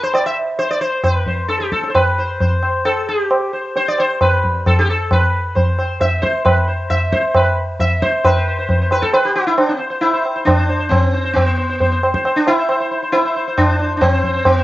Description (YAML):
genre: indian classical, Hindustani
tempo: 134 BPM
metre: 7/4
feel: straight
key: C raga yaman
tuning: A4 = 440 Hz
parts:
  - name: sitar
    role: melody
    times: 0.0-14.6 s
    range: B3 to E5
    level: -17 LUFS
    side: equal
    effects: cassette tape
  - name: tabla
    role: percussion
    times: 0.1-14.6 s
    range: none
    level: -16 LUFS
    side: equal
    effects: none
room: small room ambience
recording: home recording on cassette, nothing above 7.8 kHz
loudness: -14 LUFS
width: side -16 dB against mid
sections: 0.0-8.2 A section; 8.2-14.6 B section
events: speeding up 0.0-14.6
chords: none